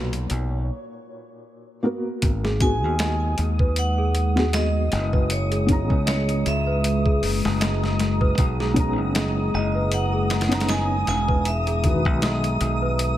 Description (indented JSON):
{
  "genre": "trip hop",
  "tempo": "78 BPM",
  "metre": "4/4",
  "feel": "swing 56% on 16ths",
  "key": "G# minor",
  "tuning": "A4 = 443 Hz",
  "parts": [
    { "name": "felt-muted upright piano", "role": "accompaniment", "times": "0.0-13.2 s", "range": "A#2 to A#5", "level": "-28 LUFS", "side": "left 1 dB", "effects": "tremolo, tape echo" },
    { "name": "fingered electric bass", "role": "bass", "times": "0.0-13.2 s", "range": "E1 to D#2", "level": "-24 LUFS", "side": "equal", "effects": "none" },
    { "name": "flickering grainy texture", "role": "texture", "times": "0.0-13.2 s", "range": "C#5 to D#6", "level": "-33 LUFS", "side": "left 1 dB", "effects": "built-in reverb" },
    { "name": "boom bap sampler-style drum kit", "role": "drums", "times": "0.1-13.2 s", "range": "hi-hat, kick drum, snare drum", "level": "-24 LUFS", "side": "equal", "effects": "none" },
    { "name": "dark analog pad", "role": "sustained chords", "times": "3.1-13.2 s", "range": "G#3 to A#5", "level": "-29 LUFS", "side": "equal", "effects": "chorus" },
    { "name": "celesta", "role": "arpeggios", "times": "2.4-13.2 s", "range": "G#4 to D#5", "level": "-31 LUFS", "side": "right 2 dB", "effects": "tape echo" },
    { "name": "vibraphone with hard mallets", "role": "melody", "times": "2.6-13.2 s", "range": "C#5 to G#5", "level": "-29 LUFS", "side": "equal", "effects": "tape echo" }
  ],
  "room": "small room reverb",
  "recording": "none",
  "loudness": "-20 LUFS",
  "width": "side -13 dB against mid",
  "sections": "0.0-2.2 A section; 2.2-13.2 B section",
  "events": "break 0.7-2.2",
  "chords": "0.0 Bmaj9; 2.2 G#m9; 5.3 F#7sus4; 8.4 Bmaj9; 11.5 Emaj9#11",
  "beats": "0.69 1.46 | 2.23 2.99 3.76 4.53 | 5.30 6.07 6.84 7.61 | 8.38 9.15 9.92 10.69 | 11.46 12.22 12.99"
}